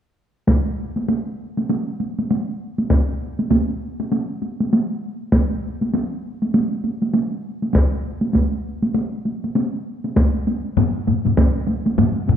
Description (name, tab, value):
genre	japanese traditional, taiko drum ensemble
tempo	99 BPM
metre	4/4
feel	swing 60% on 16ths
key	none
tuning	none
part	solo taiko drums	percussion	0.5-11.5 s	none	-20 LUFS	equal	none
part	taiko ensemble	percussion	0.5-12.4 s	none	-20 LUFS	right 1 dB	none
part	taiko ensemble	percussion	10.8-12.4 s	none	-19 LUFS	left 3 dB	none
room	wet recital hall reverb, RT60 1.5 s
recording	dark, warm production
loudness	-19 LUFS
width	side -9 dB against mid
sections	0.5-10.2 A section; 10.2-12.4 B section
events	none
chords	none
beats	| 0.48 1.08 1.69 2.30 | 2.90 3.51 4.12 4.72 | 5.33 5.93 6.54 7.14 | 7.75 8.35 8.96 9.56 | 10.16 10.77 11.37 11.97